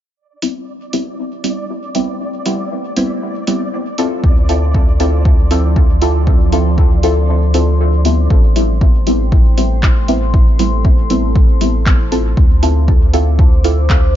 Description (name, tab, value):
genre	dub techno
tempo	118 BPM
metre	4/4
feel	straight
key	A minor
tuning	A4 = 440 Hz
part	deep dark ambient pad	sustained chords	2.3-14.2 s	F3 to D6	-25 LUFS	equal	chorus, built-in reverb, sidechain pumping
part	flickering grainy texture	texture	0.5-8.3 s	D5	-30 LUFS	right 1 dB	built-in reverb, sidechain pumping
part	deep mellow chord stab	stabs	0.4-14.0 s	G3 to A4	-18 LUFS	equal	chorus, phaser, sidechain pumping, dub echo
part	punchy analog drum machine	drums	0.4-14.0 s	handclaps, hi-hat	-23 LUFS	right 1 dB	none
part	warm sub bass	bass	4.2-14.2 s	A1 to D2	-15 LUFS	equal	sidechain pumping
part	electronic kick drum	drums	4.2-14.0 s	none	-11 LUFS	equal	none
room	little or no reverb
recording	dark, warm production, nothing above 7.5 kHz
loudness	-11 LUFS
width	side -12 dB against mid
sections	0.2-8.3 A section; 8.3-14.2 B section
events	filter sweep on ambient pad 0.2-8.3; kick drops out 7.3-8.3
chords	0.2 Am7; 4.2 Dm7; 8.3 Am7; 12.4 Dm7